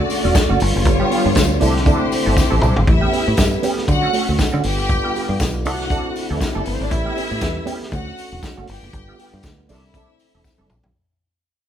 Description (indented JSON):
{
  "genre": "disco",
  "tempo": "119 BPM",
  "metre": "4/4",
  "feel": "swing 56% on 16ths",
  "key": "unclear",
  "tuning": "A4 = 438 Hz",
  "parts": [
    { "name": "warm studio string section", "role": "second line", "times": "0.0-10.7 s", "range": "E3 to G5", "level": "-23 LUFS", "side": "left 2 dB", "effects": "none" },
    { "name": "mellow electric guitar", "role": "accompaniment", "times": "0.0-10.9 s", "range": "A3 to A4", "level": "-25 LUFS", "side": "right 5 dB", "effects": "wah" },
    { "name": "dark French horn section", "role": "sustained chords", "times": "0.0-10.9 s", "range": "C#3 to G4", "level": "-25 LUFS", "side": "left 1 dB", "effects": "none" },
    { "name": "fingered electric bass", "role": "bass", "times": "0.0-10.9 s", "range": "E1 to D3", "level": "-21 LUFS", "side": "equal", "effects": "none" },
    { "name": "warm soul drum kit", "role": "drums", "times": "0.1-10.9 s", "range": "hi-hat, kick drum, snare drum, toms", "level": "-20 LUFS", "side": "equal", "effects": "none" },
    { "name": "tambourine", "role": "percussion", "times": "0.1-10.8 s", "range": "none", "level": "-34 LUFS", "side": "left 7 dB", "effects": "none" }
  ],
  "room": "moderate large studio reverb, RT60 1.1 s",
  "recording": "band playing live in one room",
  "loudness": "-15 LUFS",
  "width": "side -10 dB against mid",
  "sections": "0.0-2.9 A section; 2.9-10.9 B section",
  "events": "drum fill 2.4-2.9, 10.4-10.9; fade-out 2.9-10.9",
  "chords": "0.0 Dmaj7; 0.6 G7; 1.6 C69; 2.9 A9; 3.9 Dmaj7; 4.6 G7; 5.7 C69; 6.9 A9; 7.9 Dmaj7; 8.7 G7; 9.7 C69"
}